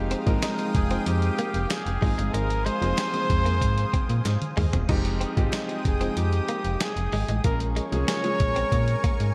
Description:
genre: 1980s-style pop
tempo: 94 BPM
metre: 4/4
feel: straight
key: F minor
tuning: A4 = 439 Hz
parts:
  - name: warm grand piano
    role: accompaniment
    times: 0.0-9.3 s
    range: F3 to G5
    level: -33 LUFS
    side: equal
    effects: none
  - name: lush unison pad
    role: sustained chords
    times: 0.0-9.3 s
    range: Ab3 to Eb6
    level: -38 LUFS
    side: equal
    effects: chorus, phaser
  - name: slap-like FM bass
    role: bass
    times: 0.0-9.3 s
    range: E1 to Bb2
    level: -28 LUFS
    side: equal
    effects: none
  - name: direct-recorded clean electric guitar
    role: riff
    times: 0.1-9.2 s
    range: Ab3 to Eb4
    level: -37 LUFS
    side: equal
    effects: lush chorus, tape echo
  - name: dusty soul sampler-style drum kit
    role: drums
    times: 0.1-9.3 s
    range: crash cymbal, hi-hat, kick drum, snare drum, tambourine, toms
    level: -30 LUFS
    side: equal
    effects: none
  - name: group handclap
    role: percussion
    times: 0.4-8.2 s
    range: none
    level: barely audible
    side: none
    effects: none
  - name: warm flugelhorn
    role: melody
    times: 0.7-9.3 s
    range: G4 to Db5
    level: -32 LUFS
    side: equal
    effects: tape echo
room: moderate plate reverb, RT60 2.2 s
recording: dreamy mix soaked in reverb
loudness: -25 LUFS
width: mono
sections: 0.0-9.3 A section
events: drum fill 4.3-4.9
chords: 0.0 Fm9; 2.0 Ab6; 4.9 Fm9; 7.4 Bbm7

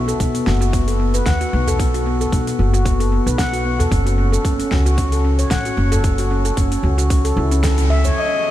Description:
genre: organic downtempo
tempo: 113 BPM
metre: 4/4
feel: swing 55% on 16ths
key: unclear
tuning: A4 = 438 Hz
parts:
  - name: handpan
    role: arpeggios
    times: 0.0-8.2 s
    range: B3 to F#5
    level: -20 LUFS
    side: left 1 dB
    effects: vintage 12-bit sampler grit, analog delay
  - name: upright bass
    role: bass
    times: 0.0-8.1 s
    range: F#1 to D#2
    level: -18 LUFS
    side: equal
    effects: sidechain pumping
  - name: deep house drum kit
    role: drums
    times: 0.1-8.1 s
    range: hi-hat, shaker, snare drum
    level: -27 LUFS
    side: equal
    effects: overdrive, low-pass filter on hats, low-pass filter on perc, low-pass filter on snare
  - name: electronic kick drum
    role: drums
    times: 0.2-7.8 s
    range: none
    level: -21 LUFS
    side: equal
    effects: none
  - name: udu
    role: percussion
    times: 0.5-8.1 s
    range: none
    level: -24 LUFS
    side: right 1 dB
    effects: none
  - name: dark kamancheh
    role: melody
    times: 8.2-8.5 s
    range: D#5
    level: -19 LUFS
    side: left 3 dB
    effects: none
room: light reverb, small room ambience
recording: none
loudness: -15 LUFS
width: side -13 dB against mid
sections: 0.0-8.2 A section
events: band accent 7.6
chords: 0.0 B7(no3); 3.9 F#m

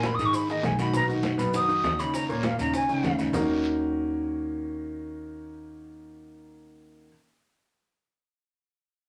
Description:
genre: Afro-Cuban jazz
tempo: 200 BPM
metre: 4/4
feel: straight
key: Eb minor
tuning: A4 = 440 Hz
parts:
  - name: reedy jazz flute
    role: melody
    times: 0.0-3.2 s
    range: Db5 to Eb6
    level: -29 LUFS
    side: equal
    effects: none
  - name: warm baby grand piano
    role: accompaniment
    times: 0.0-7.1 s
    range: Bb2 to B4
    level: -31 LUFS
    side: equal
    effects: none
  - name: upright bass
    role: bass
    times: 0.0-7.1 s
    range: Ab1 to Ab2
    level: -38 LUFS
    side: equal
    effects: none
  - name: bongos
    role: percussion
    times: 0.0-3.4 s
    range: none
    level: -36 LUFS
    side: equal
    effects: none
  - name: congas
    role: percussion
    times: 0.0-3.4 s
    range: none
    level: -38 LUFS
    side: equal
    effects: none
  - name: guiro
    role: percussion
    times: 0.0-3.4 s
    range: none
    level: -42 LUFS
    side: equal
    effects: none
  - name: maracas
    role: percussion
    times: 0.0-3.4 s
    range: none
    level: -48 LUFS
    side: equal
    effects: none
room: wet studio reverb, RT60 0.5 s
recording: none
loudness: -27 LUFS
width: mono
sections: 0.0-3.3 A section; 3.3-5.7 B section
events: flute solo 0.0-3.3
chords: 0.0 Abmadd9; 0.9 B; 2.1 Eb5; 3.3 Ebm7

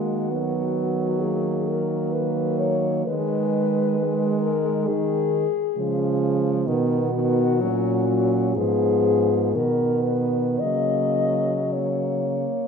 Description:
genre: classical, lyrical piece for horn quartet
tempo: 53-68 BPM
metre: 4/4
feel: rubato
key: F# major from 6.7 s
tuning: A4 = 440 Hz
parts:
  - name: mellow French horn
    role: melody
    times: 0.0-12.7 s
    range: Gb4 to D#5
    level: -25 LUFS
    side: left 9 dB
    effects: none
  - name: dark French horn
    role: second line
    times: 0.0-12.7 s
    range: Ab3 to C#4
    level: -27 LUFS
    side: right 9 dB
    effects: none
  - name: warm French horn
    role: accompaniment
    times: 0.0-12.5 s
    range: Eb3 to Ab3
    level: -28 LUFS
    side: left 2 dB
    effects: none
  - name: dark French horn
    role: bass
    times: 0.0-12.5 s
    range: G#2 to Eb3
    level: -26 LUFS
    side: right 4 dB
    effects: none
room: moderate recital hall reverb, RT60 1.5 s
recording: minimal, uncompressed stereo recording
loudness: -20 LUFS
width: side -6 dB against mid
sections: 0.0-12.7 A section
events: none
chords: 0.0 Ebm; 3.1 Fm7b5/Eb; 6.7 Bmaj7; 8.6 G#m; 10.6 F#/C#

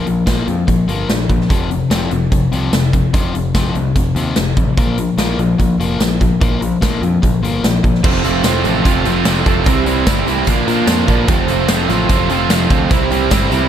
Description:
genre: classic rock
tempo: 147 BPM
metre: 4/4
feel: straight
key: F major from 8.0 s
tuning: A4 = 441 Hz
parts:
  - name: biting overdriven guitar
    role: riff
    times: 0.0-13.7 s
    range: F2 to C4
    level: -17 LUFS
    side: left 4 dB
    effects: none
  - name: modern bright picked electric bass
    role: bass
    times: 0.1-13.7 s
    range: F1 to Bb2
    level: -21 LUFS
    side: right 1 dB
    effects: none
  - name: big rock drum kit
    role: drums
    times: 0.1-13.6 s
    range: crash cymbal, hi-hat, kick drum, snare drum, tambourine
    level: -17 LUFS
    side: equal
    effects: none
  - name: picked twelve-string acoustic guitar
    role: accompaniment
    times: 8.0-13.7 s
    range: F2 to A4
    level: -23 LUFS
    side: right 14 dB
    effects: none
  - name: distorted electric guitar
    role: riff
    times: 8.0-13.7 s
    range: Bb2 to F4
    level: -19 LUFS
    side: right 16 dB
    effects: distortion
  - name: overdriven electric guitar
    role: riff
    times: 8.0-13.7 s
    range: Bb2 to F4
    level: -23 LUFS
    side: right 2 dB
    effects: none
  - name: tambourine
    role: percussion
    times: 8.0-13.7 s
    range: none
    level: -38 LUFS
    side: left 4 dB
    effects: none
room: light reverb, studio reverb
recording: none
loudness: -12 LUFS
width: side -10 dB against mid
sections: 0.0-8.0 A section; 8.0-13.7 B section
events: none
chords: 0.0 Bb5; 1.5 F5; 4.8 Bb5; 8.0 F; 9.7 C; 10.5 Bb; 11.3 F; 12.9 C

